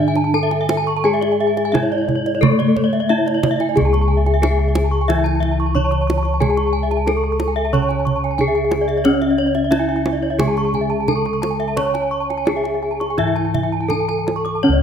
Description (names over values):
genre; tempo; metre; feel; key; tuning
Balinese gamelan; 81-91 BPM; 4/4; straight; C# pelog; A4 = 440 Hz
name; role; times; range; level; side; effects
gamelan-type bronze metallophone; melody; 0.0-14.8 s; A3 to C#5; -20 LUFS; equal; none
gamelan-type bronze metallophone; accompaniment; 0.0-14.8 s; C#3 to C#4; -27 LUFS; left 2 dB; none
gamelan-type bronze metallophone; arpeggios; 0.0-14.8 s; A4 to C#6; -25 LUFS; right 6 dB; none
gamelan-type bossed gongs; bass; 0.0-14.8 s; C#2 to C#5; -21 LUFS; equal; none
gamelan-type bronze metallophone; arpeggios; 0.1-14.7 s; A4 to D6+35c; -24 LUFS; left 6 dB; none
kendang; percussion; 0.2-14.6 s; none; -23 LUFS; right 4 dB; none
room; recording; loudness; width
light reverb; close, detailed microphones; -16 LUFS; side -8 dB against mid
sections
0.0-3.8 A section; 3.8-14.6 B section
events
none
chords
none